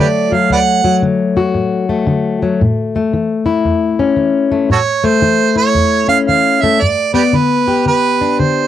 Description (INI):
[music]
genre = acoustic country blues, solo or duo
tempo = 114 BPM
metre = 4/4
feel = swing 64% on 8ths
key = D major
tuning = A4 = 440 Hz
[part]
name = warm harmonica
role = melody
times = 0.0-1.0, 4.7-8.7 s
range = F#4 to F#5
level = -13 LUFS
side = right 7 dB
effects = cassette tape
[part]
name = fingerpicked plugged-in steel-string acoustic guitar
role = accompaniment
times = 0.0-8.7 s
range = D2 to G4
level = -13 LUFS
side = left 4 dB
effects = none
[sound]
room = light reverb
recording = home recording on cassette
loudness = -11 LUFS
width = side -11 dB against mid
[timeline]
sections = 0.0-8.7 A section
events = none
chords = 0.0 D; 2.6 A; 6.8 G